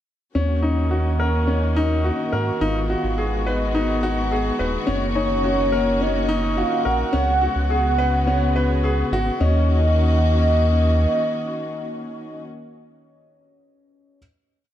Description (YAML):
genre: piano and strings electronica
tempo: 106 BPM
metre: 4/4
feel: straight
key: Eb minor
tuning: A4 = 444 Hz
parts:
  - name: clear grand piano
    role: riff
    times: 0.3-14.2 s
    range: Db4 to Cb5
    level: -25 LUFS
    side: left 1 dB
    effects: digital delay
  - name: dark studio string section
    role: sustained chords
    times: 0.4-12.4 s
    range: Db3 to Gb4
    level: -25 LUFS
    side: left 1 dB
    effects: none
  - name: round analog bass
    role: bass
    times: 0.4-11.1 s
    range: Eb1 to Ab2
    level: -21 LUFS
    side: equal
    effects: none
  - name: warm velvety synth lead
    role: melody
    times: 0.6-12.4 s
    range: Db5 to Gb5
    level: -24 LUFS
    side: right 1 dB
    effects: chorus, tremolo
room: moderate echo chamber reverb, RT60 2.3 s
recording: dark, warm production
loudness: -18 LUFS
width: side -11 dB against mid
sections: 0.3-9.4 build; 9.4-11.7 final chord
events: build-up 0.3-9.4; filter sweep on soft synth lead 0.3-9.4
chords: 0.3 Ebm7; 2.6 Abm7; 4.9 Gb6; 7.1 Db7sus4; 9.4 Ebm7